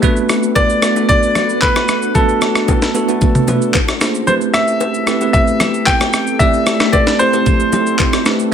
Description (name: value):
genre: amapiano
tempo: 113 BPM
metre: 4/4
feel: straight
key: unclear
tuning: A4 = 440 Hz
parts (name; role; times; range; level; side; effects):
- bell-like tine electric piano; accompaniment; 0.0-8.5 s; A3 to D5; -18 LUFS; right 4 dB; fast stereo tremolo
- glassy FM pad; sustained chords; 0.0-8.5 s; A3 to B4; -22 LUFS; left 4 dB; ensemble chorus, built-in reverb, sidechain pumping
- breakbeat sampler-style drum kit; drums; 0.0-8.5 s; handclaps, kick drum, rim click, shaker, snare drum, toms; -16 LUFS; equal; vintage 12-bit sampler grit
- congas and bongos; percussion; 0.0-8.2 s; none; -24 LUFS; left 6 dB; none
- clear concert grand piano; melody; 0.6-8.2 s; A4 to G5; -16 LUFS; equal; tape echo
room: light reverb, digital ambience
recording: none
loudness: -12 LUFS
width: side -8 dB against mid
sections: 0.0-8.5 A section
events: kick muted 4.3-5.3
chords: 0.0 Bm7; 3.7 Bbm9; 4.3 Am9